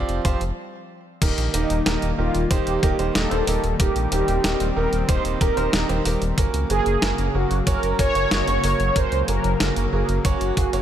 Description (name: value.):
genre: synthwave.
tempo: 93 BPM.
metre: 4/4.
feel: straight.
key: unclear.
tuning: A4 = 439 Hz.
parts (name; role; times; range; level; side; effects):
warm analog pad; sustained chords; 0.0-10.8 s; Db3 to C4; -29 LUFS; left 2 dB; chorus, sidechain pumping.
clear baby grand piano; stabs; 0.0-10.8 s; Eb3 to Eb5; -27 LUFS; right 7 dB; digital delay.
round analog bass; bass; 0.0-10.8 s; Eb1 to Db2; -24 LUFS; equal; none.
clean 12-bit digital drum machine; drums; 0.1-10.8 s; crash cymbal, hi-hat, snare drum; -27 LUFS; equal; overdrive.
electronic kick drum; drums; 0.2-10.7 s; none; -22 LUFS; equal; overdrive.
mellow synth brass; melody; 1.5-10.8 s; Eb4 to Db5; -24 LUFS; equal; chorus, cassette tape, digital delay.
room: light reverb, digital ambience.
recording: none.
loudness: -19 LUFS.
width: side -10 dB against mid.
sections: 0.0-1.2 A section; 1.2-10.8 B section.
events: stop 0.6-1.2.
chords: 0.0 Fsus2; 1.2 Eb; 6.4 Gb.